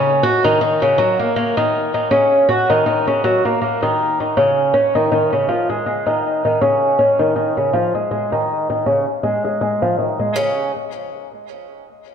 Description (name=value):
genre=folktronica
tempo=80 BPM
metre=4/4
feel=swing 56% on 16ths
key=unclear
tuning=A4 = 441 Hz
part: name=picked twelve-string acoustic guitar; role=arpeggios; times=0.0-10.7 s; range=Db3 to Gb4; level=-15 LUFS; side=equal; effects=low-pass filter, ping-pong delay
room=wet scoring stage reverb, RT60 1.6 s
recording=none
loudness=-15 LUFS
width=side -7 dB against mid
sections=0.0-10.4 A section; 10.4-12.1 B section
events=filter sweep on twelve-string acoustic guitar 0.0-10.4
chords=none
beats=0.61 | 1.36 2.11 2.86 3.61 | 4.36 5.11 5.86 6.61 | 7.36 8.11 8.86 9.61 | 10.36